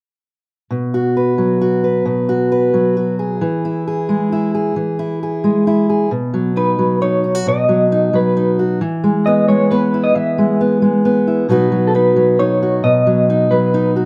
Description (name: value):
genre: folk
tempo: 134 BPM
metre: 3/4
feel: straight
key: B major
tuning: A4 = 439 Hz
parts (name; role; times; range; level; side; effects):
- fingerpicked steel-string acoustic guitar; accompaniment; 0.7-14.1 s; B2 to B4; -17 LUFS; equal; plate reverb
- electric guitar through a small old amp; melody; 6.6-13.9 s; A4 to E5; -18 LUFS; equal; tremolo, plate reverb, digital delay
room: wet studio reverb, RT60 0.6 s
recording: rough home demo mix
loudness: -16 LUFS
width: mono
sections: 0.7-6.1 A section; 6.1-14.1 B section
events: none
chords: 0.7 B5; 3.4 E; 6.1 B; 8.8 E; 11.5 B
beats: | 0.71 1.16 1.61 | 2.06 2.51 2.96 | 3.41 3.87 4.32 | 4.76 5.21 5.67 | 6.11 6.56 7.01 | 7.46 7.91 8.36 | 8.81 9.26 9.71 | 10.15 10.60 11.05 | 11.50 11.95 12.39 | 12.84 13.29 13.74